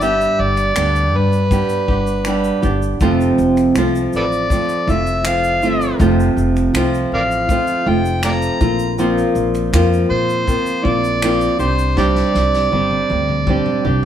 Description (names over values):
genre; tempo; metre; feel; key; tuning
acoustic pop; 80 BPM; 4/4; straight; F major; A4 = 438 Hz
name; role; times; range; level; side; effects
overdriven harmonica; melody; 0.0-14.1 s; A4 to Bb5; -19 LUFS; equal; none
flamenco guitar; accompaniment; 0.0-14.1 s; F2 to G4; -17 LUFS; right 1 dB; none
upright bass; bass; 0.0-14.1 s; F1 to Bb2; -20 LUFS; equal; none
loose indie drum kit; drums; 0.0-14.0 s; finger snaps, kick drum, shaker, snare drum, toms; -23 LUFS; left 1 dB; none
room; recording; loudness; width
moderate stone room reverb, RT60 1.1 s; band playing live in one room; -14 LUFS; side -10 dB against mid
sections
0.0-14.1 A section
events
drum fill 12.0-14.1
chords
0.0 G; 3.0 F; 8.6 Bbsus2; 11.6 Csus2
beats
| 0.02 0.77 1.51 2.26 | 3.01 3.75 4.50 5.25 | 6.00 6.74 7.49 8.24 | 8.98 9.73 10.48 11.22 | 11.97 12.72 13.47